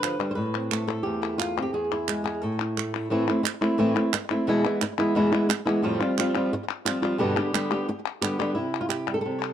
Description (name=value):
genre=flamenco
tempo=176 BPM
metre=4/4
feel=straight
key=A minor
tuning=A4 = 440 Hz
part: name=flamenco guitar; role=melody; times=0.0-9.5 s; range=E2 to C5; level=-24 LUFS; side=equal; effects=slapback echo
part: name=palmas hand claps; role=percussion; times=0.0-9.5 s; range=none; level=-29 LUFS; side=left 2 dB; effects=none
room=little or no reverb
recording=dry, close 1970s-style studio recording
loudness=-23 LUFS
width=side -9 dB against mid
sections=0.0-3.1 A section; 3.1-8.6 B section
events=none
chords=0.4 Am7; 1.7 E; 2.4 A5; 3.1 Am; 4.5 E; 5.8 Fsus2; 7.2 G; 8.6 C